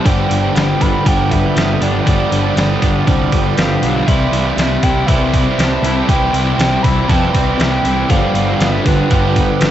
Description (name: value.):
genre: rock, shoegaze and dream pop.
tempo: 119 BPM.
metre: 4/4.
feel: straight.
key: C major.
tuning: A4 = 439 Hz.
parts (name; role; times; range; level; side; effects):
reedy FM lead; melody; 0.0-9.7 s; B4 to B5; -22 LUFS; equal; chorus, tape echo.
twangy electric guitar; arpeggios; 0.0-9.7 s; E3 to G4; -25 LUFS; left 8 dB; wide subtle chorus, cassette tape, tape echo.
overdriven electric guitar; riff; 0.0-9.7 s; G2 to G4; -18 LUFS; right 8 dB; reverse reverb, cassette tape.
thick fuzz guitar; riff; 0.0-9.7 s; G2 to C4; -20 LUFS; left 7 dB; distortion, analog chorus, cassette tape.
fuzz picked electric bass; bass; 0.1-9.7 s; G1 to F2; -18 LUFS; equal; overdrive.
detuned 8-bit digital drum machine; drums; 0.1-9.7 s; hi-hat, kick drum, snare drum; -17 LUFS; equal; overdrive, cassette tape.
room: light reverb.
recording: home recording on cassette, nothing above 7.9 kHz.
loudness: -12 LUFS.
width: side -11 dB against mid.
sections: 0.0-9.7 A section.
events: none.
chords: 0.1 G7; 4.1 C; 8.1 G7.